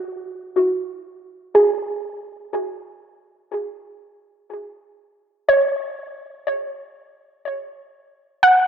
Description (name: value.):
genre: ambient.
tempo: free time.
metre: none.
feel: none.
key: unclear.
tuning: A4 = 439 Hz.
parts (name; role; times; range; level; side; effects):
soft round pluck; solo; 0.0-8.7 s; E4 to F#5; -18 LUFS; right 1 dB; analog chorus, tape echo.
room: wet spring reverb, RT60 2.2 s.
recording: echo-heavy mix.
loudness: -19 LUFS.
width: side -8 dB against mid.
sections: 0.0-8.7 A section.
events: none.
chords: 0.0 Eadd9; 2.5 F#5.